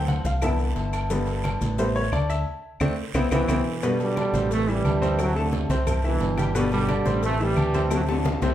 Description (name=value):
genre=latin, salsa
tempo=176 BPM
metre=4/4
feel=straight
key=G major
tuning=A4 = 438 Hz
part: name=clear baby grand piano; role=accompaniment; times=0.0-8.5 s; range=B2 to C6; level=-27 LUFS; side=left 2 dB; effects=none
part: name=fingered electric bass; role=bass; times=0.0-8.5 s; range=G1 to D2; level=-26 LUFS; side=equal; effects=none
part: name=agogo bells and timbales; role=percussion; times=0.1-8.5 s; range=none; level=-35 LUFS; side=right 3 dB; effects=none
part: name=congas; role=percussion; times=0.1-8.5 s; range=none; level=-31 LUFS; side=equal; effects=none
part: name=cowbell and bongos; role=percussion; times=0.1-8.5 s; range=none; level=-34 LUFS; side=left 5 dB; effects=none
part: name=guiro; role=percussion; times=0.1-8.5 s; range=none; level=-43 LUFS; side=right 6 dB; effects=none
part: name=maracas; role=percussion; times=0.1-8.5 s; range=none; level=-45 LUFS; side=left 6 dB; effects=none
part: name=claves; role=percussion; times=0.4-8.1 s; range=none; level=-40 LUFS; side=left 2 dB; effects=none
part: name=bright trombone section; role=melody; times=3.3-8.5 s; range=F#2 to A3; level=-25 LUFS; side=right 2 dB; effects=none
room=moderate large studio reverb, RT60 0.9 s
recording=heard from further back in the room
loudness=-21 LUFS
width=side -12 dB against mid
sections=0.0-3.8 A section; 3.8-8.5 B section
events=grand piano solo 0.0-3.8; band accent 2.5-3.8; drum fill 2.8-3.8, 7.9-8.5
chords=0.4 Cmaj7; 1.1 G; 1.8 Am7; 2.5 D5; 3.1 Cmaj7; 3.8 G; 4.5 Am7; 5.2 D7; 5.9 Cmaj7; 6.5 G; 7.2 Am7; 7.9 D7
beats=0.08 0.42 0.76 | 1.10 1.44 1.78 2.12 | 2.47 2.81 3.15 3.49 | 3.83 4.17 4.51 4.85 | 5.19 5.53 5.87 6.21 | 6.55 6.89 7.23 7.57 | 7.91 8.25